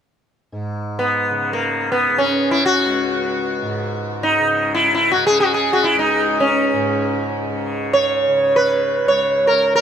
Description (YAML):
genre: indian classical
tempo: free time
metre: none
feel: none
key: C# raga bhimpalasi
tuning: A4 = 440 Hz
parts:
  - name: tanpura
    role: drone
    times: 0.5-9.8 s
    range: C#2 to C#3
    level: -25 LUFS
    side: equal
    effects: none
  - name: sitar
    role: melody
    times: 1.0-9.8 s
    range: A#3 to C#5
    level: -16 LUFS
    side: equal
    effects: none
room: light reverb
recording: none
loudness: -15 LUFS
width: side -8 dB against mid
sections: 0.5-9.8 A section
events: none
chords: none